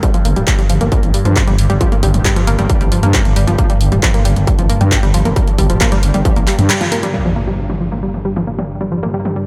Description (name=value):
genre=driving peak-time techno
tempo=135 BPM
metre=4/4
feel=straight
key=G minor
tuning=A4 = 440 Hz
part: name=analog pluck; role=riff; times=0.0-9.5 s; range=F3 to Bb3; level=-22 LUFS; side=equal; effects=chorus, sidechain pumping, tape echo
part: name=overtone-sweeping drone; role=drone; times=0.0-9.5 s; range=G2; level=-23 LUFS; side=equal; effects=chorus, built-in reverb, sidechain pumping
part: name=electronic kick drum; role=drums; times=0.0-6.3 s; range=none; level=-17 LUFS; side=equal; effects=distortion
part: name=punchy analog drum machine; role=drums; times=0.0-9.3 s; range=crash cymbal, handclaps, hi-hat, toms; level=-23 LUFS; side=equal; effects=sidechain pumping on hats, low-pass filter on hats, sidechain pumping on cymbals, low-pass filter on cymbals, sidechain pumping on toms, low-pass filter on toms, low-pass filter on snare, low-pass filter on room
part: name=growling FM bass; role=bass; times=0.3-6.7 s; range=D1 to G2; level=-18 LUFS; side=equal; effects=sidechain pumping
part: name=impact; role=sound effects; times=7.1-8.9 s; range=none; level=-26 LUFS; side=equal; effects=none
room=light reverb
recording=none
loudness=-14 LUFS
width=mono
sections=0.0-7.1 A section; 7.1-9.5 B section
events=kick drops out 6.7-7.1; band accent 6.7; drum fill 6.9; impact 7.1-8.9; filter sweep on synth arpeggio sound 7.1-9.5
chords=0.0 Gm